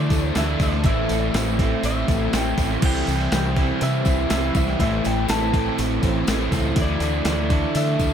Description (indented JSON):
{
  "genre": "rock, shoegaze and dream pop",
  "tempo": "122 BPM",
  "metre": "4/4",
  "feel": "straight",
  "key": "unclear",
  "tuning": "A4 = 442 Hz",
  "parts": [
    { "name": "electric guitar through a small old amp", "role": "melody", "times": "0.0-8.1 s", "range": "D5 to A5", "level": "-29 LUFS", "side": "equal", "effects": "analog chorus, analog delay" },
    { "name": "glassy FM pad", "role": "sustained chords", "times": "0.0-8.1 s", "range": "E4 to A5", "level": "-33 LUFS", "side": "left 2 dB", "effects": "ensemble chorus, built-in reverb" },
    { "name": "picked twelve-string acoustic guitar", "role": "arpeggios", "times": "0.0-8.1 s", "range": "E3 to G4", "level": "-32 LUFS", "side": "right 1 dB", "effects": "wide subtle chorus, analog delay" },
    { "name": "overdriven electric guitar", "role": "riff", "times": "0.0-8.1 s", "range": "A2 to E4", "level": "-29 LUFS", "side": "equal", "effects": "none" },
    { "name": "raw garage guitar", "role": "riff", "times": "0.0-8.1 s", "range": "A2 to E4", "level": "-28 LUFS", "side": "right 12 dB", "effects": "overdrive, reverse reverb" },
    { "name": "thick fuzz guitar", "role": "riff", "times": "0.0-8.1 s", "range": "A2 to D4", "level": "-28 LUFS", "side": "left 10 dB", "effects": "distortion, ensemble chorus" },
    { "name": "growling fingered electric bass", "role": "bass", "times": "0.0-8.1 s", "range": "A1 to D3", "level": "-24 LUFS", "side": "equal", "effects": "overdrive" },
    { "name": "crisp 8-bit digital drum machine", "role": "drums", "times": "0.1-8.1 s", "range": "crash cymbal, hi-hat, kick drum, snare drum", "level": "-24 LUFS", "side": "equal", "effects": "overdrive" },
    { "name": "tambourine", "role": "percussion", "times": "0.1-8.1 s", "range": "none", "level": "-39 LUFS", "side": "left 15 dB", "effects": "none" }
  ],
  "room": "light reverb",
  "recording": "none",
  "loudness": "-19 LUFS",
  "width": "side -8 dB against mid",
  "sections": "0.0-8.1 A section",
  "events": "none",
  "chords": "0.0 Dsus2; 0.9 Am7; 2.8 Cmaj7; 4.8 Am7; 6.8 Dsus2"
}